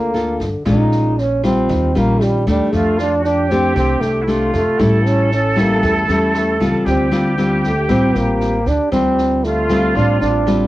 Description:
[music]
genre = bossa nova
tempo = 116 BPM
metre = 4/4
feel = straight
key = D minor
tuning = A4 = 440 Hz
[part]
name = breathy trombone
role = melody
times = 0.0-10.7 s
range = G3 to Eb4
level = -18 LUFS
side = right 1 dB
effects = cassette tape
[part]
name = nylon-string guitar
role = accompaniment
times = 0.0-10.7 s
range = A2 to A4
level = -18 LUFS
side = left 1 dB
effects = cassette tape
[part]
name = upright bass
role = bass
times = 0.0-10.7 s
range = G1 to F2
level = -21 LUFS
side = equal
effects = none
[part]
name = open jazz drum kit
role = drums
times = 0.1-10.6 s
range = kick drum, rim click, snare drum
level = -30 LUFS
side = equal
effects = cassette tape
[part]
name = bright flute section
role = second line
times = 2.7-10.7 s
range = E4 to A4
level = -21 LUFS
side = right 1 dB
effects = cassette tape
[sound]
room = light reverb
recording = home recording on cassette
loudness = -13 LUFS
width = side -16 dB against mid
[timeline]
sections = 0.0-10.7 A section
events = none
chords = 0.0 Gm9; 0.7 Bbm7; 1.7 Eb9; 2.7 F69; 4.8 A7; 6.9 Dm7

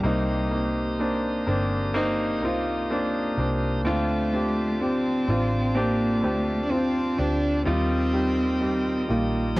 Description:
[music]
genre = pop ballad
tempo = 63 BPM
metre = 4/4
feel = straight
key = unclear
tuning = A4 = 435 Hz
[part]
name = warm cello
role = melody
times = 0.0-9.6 s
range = G3 to D4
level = -26 LUFS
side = equal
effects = cassette tape
[part]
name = clear baby grand piano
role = accompaniment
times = 0.0-9.6 s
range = C3 to G4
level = -26 LUFS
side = equal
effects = cassette tape
[part]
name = bright tonewheel organ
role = sustained chords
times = 0.0-9.6 s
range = F4 to Eb6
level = -34 LUFS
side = left 1 dB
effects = wide subtle chorus, cassette tape
[part]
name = vintage muted fingered electric bass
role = bass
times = 0.0-9.6 s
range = G1 to Eb2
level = -29 LUFS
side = equal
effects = none
[part]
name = electronic toms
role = drums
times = 9.6 s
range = none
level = -22 LUFS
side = equal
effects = cassette tape
[sound]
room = light reverb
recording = home recording on cassette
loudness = -22 LUFS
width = side -20 dB against mid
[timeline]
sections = 0.0-9.6 A section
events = none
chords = 0.0 Cm7; 3.9 Dm7; 7.7 Ebadd9

